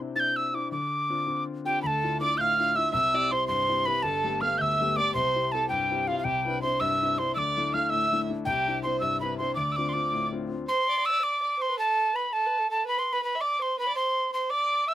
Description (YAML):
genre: celtic folk, Celtic jig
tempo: 109 BPM (dotted quarters)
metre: 6/8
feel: straight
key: D dorian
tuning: A4 = 438 Hz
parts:
  - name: clear concert grand piano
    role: accompaniment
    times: 0.0-10.6 s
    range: G1 to G4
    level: -31 LUFS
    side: left 4 dB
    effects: none
  - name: mellow wooden whistle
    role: melody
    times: 0.2-14.9 s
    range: F5 to A6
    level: -25 LUFS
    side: equal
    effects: none
  - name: dark violin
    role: second line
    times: 1.7-14.9 s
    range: F4 to F5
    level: -32 LUFS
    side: right 4 dB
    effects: none
room: light reverb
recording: rough home demo mix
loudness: -24 LUFS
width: side -12 dB against mid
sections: 0.0-1.8 A section; 1.8-10.7 A section; 10.7-14.9 B section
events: none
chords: 0.0 Cadd9; 0.7 Dm7; 1.8 Dmadd9; 2.9 C; 4.0 Gadd9; 5.2 C; 6.3 Cadd9; 7.4 Dsus2; 8.5 Cadd9; 9.6 Dm7; 10.7 N.C.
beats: 0.16 | 0.72 1.27 | 1.83 2.38 | 2.94 3.49 | 4.05 4.60 | 5.15 5.71 | 6.26 6.81 | 7.36 7.92 | 8.47 9.02 | 9.57 10.12 | 10.67 11.22 | 11.77 12.32 | 12.87 13.41 | 13.96 14.51